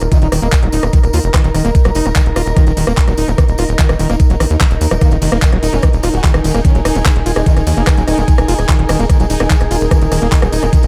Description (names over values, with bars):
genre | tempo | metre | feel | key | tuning
psychedelic trance | 147 BPM | 4/4 | straight | unclear | A4 = 440 Hz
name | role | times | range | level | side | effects
swarming drone | sustained chords | 0.0-10.9 s | Eb4 to Bb4 | -26 LUFS | equal | built-in reverb, vintage 12-bit sampler grit, sidechain pumping
tight sequencer bass | bass | 0.0-10.9 s | Eb1 to Eb2 | -18 LUFS | equal | none
garage drum kit | drums | 0.0-10.9 s | handclaps, hi-hat, ride cymbal, rim click | -23 LUFS | equal | studio reverb
tambourine | percussion | 0.0-10.9 s | none | -34 LUFS | equal | none
granular cloud pad | texture | 0.0-10.9 s | Eb4 to Bb5 | -25 LUFS | equal | built-in reverb, sidechain pumping
formant-sweep wobble bass | second line | 0.1-0.3, 5.0-8.2 s | Eb3 to Gb4 | -30 LUFS | equal | none
overdriven acid bass | riff | 0.1-10.8 s | Eb3 to F4 | -22 LUFS | equal | distortion, cassette tape, sidechain pumping, tape echo
electronic kick drum | drums | 0.1-10.8 s | none | -13 LUFS | equal | studio reverb
room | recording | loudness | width
digital ambience | none | -13 LUFS | mono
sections
0.0-10.9 A section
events
none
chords
0.0 Eb5